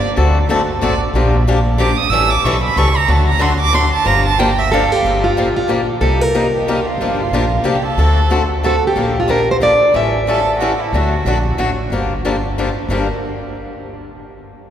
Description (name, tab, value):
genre	acoustic string swing (jazz manouche)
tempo	184 BPM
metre	3/4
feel	swing 61% on 8ths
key	G minor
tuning	A4 = 440 Hz
part	warm violin	second line	0.0-13.1 s	E4 to E6	-20 LUFS	right 4 dB	none
part	picked swing-style acoustic guitar	accompaniment	0.2-13.1 s	G2 to A4	-19 LUFS	left 2 dB	none
part	upright bass	bass	0.2-13.1 s	G1 to D2	-18 LUFS	equal	none
part	picked plugged-in steel-string acoustic guitar	melody	4.7-10.8 s	F4 to E5	-18 LUFS	equal	none
room	wet cathedral reverb, RT60 5.5 s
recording	recorded in a church or concert hall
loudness	-13 LUFS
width	side -10 dB against mid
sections	0.0-5.0 A section; 5.0-12.9 B section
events	violin solo 0.0-5.0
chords	0.2 D7; 1.1 Bb6; 2.1 A7; 3.1 D; 4.1 Gm7; 6.0 Cm7; 7.0 Gm7; 8.0 D7; 9.0 Bb6; 9.9 A7; 10.9 D; 11.9 Gm7